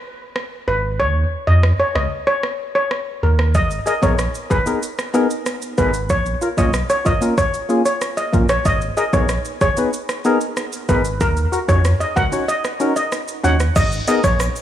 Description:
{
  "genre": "dancehall",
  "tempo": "94 BPM",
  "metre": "4/4",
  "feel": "straight",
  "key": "G# dorian",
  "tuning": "A4 = 441 Hz",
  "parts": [
    { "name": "afro-pop drum kit", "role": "drums", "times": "0.4-14.6 s", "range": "crash cymbal, hi-hat, kick drum, rim click, shaker", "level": "-22 LUFS", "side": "equal", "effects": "none" },
    { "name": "steel pan", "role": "melody", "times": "0.7-14.4 s", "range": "A#4 to F#5", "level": "-20 LUFS", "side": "equal", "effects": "tape echo" },
    { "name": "warm sub bass", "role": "bass", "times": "0.7-14.5 s", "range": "F#1 to E#2", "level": "-19 LUFS", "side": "equal", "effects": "none" },
    { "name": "percussive organ stab", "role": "accompaniment", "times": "3.9-14.2 s", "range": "A#3 to C#5", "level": "-21 LUFS", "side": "left 2 dB", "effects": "chorus" },
    { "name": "egg shaker", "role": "percussion", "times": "13.8-14.6 s", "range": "none", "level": "-34 LUFS", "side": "left 2 dB", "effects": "none" }
  ],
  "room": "light reverb",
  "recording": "small room ambience",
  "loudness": "-16 LUFS",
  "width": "side -11 dB against mid",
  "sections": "0.0-13.8 A section",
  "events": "break 0.0-3.5; kick muted 1.0-3.5, 12.5-13.8",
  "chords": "0.0 N.C.; 1.0 C#add9; 3.5 G#madd9; 6.1 A#m; 8.7 G#madd9; 11.2 D#m7; 13.8 G#madd9",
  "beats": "0.36 | 0.99 1.63 2.27 2.91 | 3.55 4.19 4.82 5.46 | 6.10 6.74 7.38 8.02 | 8.65 9.29 9.93 10.57 | 11.21 11.85 12.48 13.12 | 13.76 14.40"
}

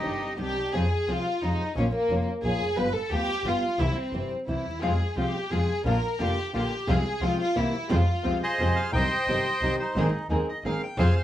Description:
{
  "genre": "tango",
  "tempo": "176 BPM",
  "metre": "3/4",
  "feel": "rubato",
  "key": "F minor",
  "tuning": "A4 = 440 Hz",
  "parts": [
    { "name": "bandoneon", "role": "melody", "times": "0.0-0.3, 8.4-11.2 s", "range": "Eb4 to Ab5", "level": "-27 LUFS", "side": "right 1 dB", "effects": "none" },
    { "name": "warm chamber violin section", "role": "second line", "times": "0.0-8.6 s", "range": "Bb3 to B4", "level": "-29 LUFS", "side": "equal", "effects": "none" },
    { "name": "nylon-string guitar", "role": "accompaniment", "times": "0.0-11.1 s", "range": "C3 to Bb4", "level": "-29 LUFS", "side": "left 1 dB", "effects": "none" },
    { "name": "warm chamber string section", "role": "stabs", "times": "0.0-0.7, 4.8-11.1 s", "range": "G3 to Ab4", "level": "-34 LUFS", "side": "right 1 dB", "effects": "none" },
    { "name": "clear double bass", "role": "bass", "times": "0.0-11.1 s", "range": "F1 to F2", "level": "-28 LUFS", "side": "equal", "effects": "none" }
  ],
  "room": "moderate studio reverb, RT60 0.5 s",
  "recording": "band playing live in one room, vinyl crackle",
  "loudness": "-24 LUFS",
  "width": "side -12 dB against mid",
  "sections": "0.7-8.9 A section; 8.9-11.2 B section",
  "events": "violin section solo 0.7-8.9",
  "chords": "0.0 Cmadd9; 0.7 Fm; 1.8 Bbm; 2.8 G7; 3.8 C; 4.8 Fm; 5.9 Bb; 6.9 Fm/C; 7.6 C7; 7.9 Fm; 8.9 Cm; 10.0 Abadd9",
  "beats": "0.04 0.38 | 0.73 1.07 1.42 | 1.76 2.09 2.43 | 2.77 3.11 3.45 | 3.79 4.13 4.48 | 4.83 5.17 5.52 | 5.86 6.20 6.54 | 6.88 7.21 7.55 | 7.90 8.24 8.59 | 8.93 9.28 9.62 | 9.96 10.30 10.64 | 10.98"
}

